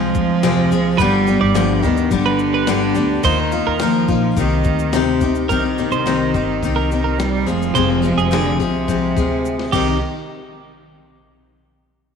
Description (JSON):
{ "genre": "acoustic pop", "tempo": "106 BPM", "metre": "4/4", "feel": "straight", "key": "C minor", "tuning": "A4 = 438 Hz", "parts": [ { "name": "bright cello", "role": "second line", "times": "0.0-10.0 s", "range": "C3 to G3", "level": "-20 LUFS", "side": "right 8 dB", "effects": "none" }, { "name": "picked steel-string acoustic guitar", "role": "accompaniment", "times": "0.0-10.0 s", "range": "F2 to Ab4", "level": "-19 LUFS", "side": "left 9 dB", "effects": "none" }, { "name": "upright bass", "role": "bass", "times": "0.0-10.0 s", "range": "F1 to Eb2", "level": "-24 LUFS", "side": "equal", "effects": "none" }, { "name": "breakbeat sampler-style drum kit", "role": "drums", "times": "0.1-9.9 s", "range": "crash cymbal, kick drum, shaker, snare drum", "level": "-27 LUFS", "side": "left 3 dB", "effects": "none" }, { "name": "twelve-string electric guitar", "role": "arpeggios", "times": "1.0-10.0 s", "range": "G4 to D5", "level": "-23 LUFS", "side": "right 7 dB", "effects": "none" } ], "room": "moderate echo chamber reverb, RT60 2.4 s", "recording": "1960s-style stereo with parts hard left and right, faint mains hum", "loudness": "-15 LUFS", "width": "side -6 dB against mid", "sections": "0.0-5.5 A section; 5.5-10.0 B section; 10.0-12.2 C section", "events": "drum fill 9.4-10.0", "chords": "0.0 Fm; 1.0 G; 3.2 Ebsus2; 4.4 Cm; 7.5 Fm; 9.7 Cm; 10.0 N.C.", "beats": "0.43 | 0.99 1.56 2.12 2.68 | 3.24 3.81 4.37 4.93 | 5.50 6.06 6.62 7.19 | 7.75 8.32 8.88 9.45" }